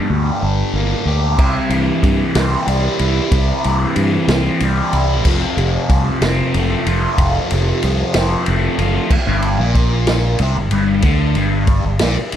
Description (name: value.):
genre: psychedelic rock.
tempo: 62 BPM (dotted quarters).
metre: 6/8.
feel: straight.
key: G minor from 9.1 s.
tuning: A4 = 442 Hz.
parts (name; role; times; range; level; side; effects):
fuzz guitar; riff; 0.0-12.4 s; F2 to G4; -18 LUFS; equal; distortion, phaser.
fingered electric bass; bass; 0.1-12.4 s; F1 to G2; -18 LUFS; equal; none.
vintage drum kit; drums; 1.4-12.4 s; crash cymbal, kick drum, ride cymbal, snare drum; -19 LUFS; equal; none.
room: light reverb, small room reverb.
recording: none.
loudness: -14 LUFS.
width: side -10 dB against mid.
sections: 0.0-9.1 A section; 9.1-12.4 B section.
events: none.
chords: 0.0 Gm; 1.4 C; 5.2 F; 9.1 Gm.